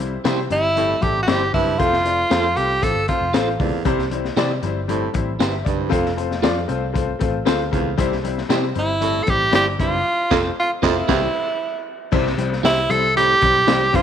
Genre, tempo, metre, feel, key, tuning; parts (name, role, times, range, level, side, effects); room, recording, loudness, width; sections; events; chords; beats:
uptempo 1960s-style soul; 116 BPM; 4/4; straight; C major; A4 = 438 Hz
warm upright piano; accompaniment; 0.0-14.0 s; G3 to G5; -24 LUFS; left 8 dB
vintage muted picked electric bass; bass; 0.0-14.0 s; F1 to C3; -26 LUFS; right 1 dB
electric guitar at the edge of break-up; stabs; 0.2-13.8 s; E4 to C5; -27 LUFS; right 11 dB; tremolo
crunchy breakbeat drum kit; drums; 0.2-14.0 s; crash cymbal, hi-hat, kick drum, snare drum; -24 LUFS; left 2 dB
bright tenor saxophone; melody; 0.5-3.6, 8.8-14.0 s; E4 to A4; -18 LUFS; right 1 dB
breathy baritone saxophone; riff; 0.8-14.0 s; E2 to C3; -26 LUFS; right 10 dB
moderate echo chamber reverb, RT60 2.1 s; 1960s-style stereo with parts hard left and right; -17 LUFS; side -9 dB against mid
0.0-12.1 A section; 12.1-14.0 B section
band accent 10.1-12.1
0.0 C; 1.8 F; 3.9 C; 5.9 F; 8.0 C; 10.1 F; 11.1 C
0.25 0.77 1.28 | 1.80 2.31 2.83 3.35 | 3.86 4.38 4.89 5.41 | 5.92 6.44 6.95 7.47 | 7.99 8.50 9.02 9.54 | 10.05 10.57 11.09 11.61 | 12.13 12.64 13.16 13.68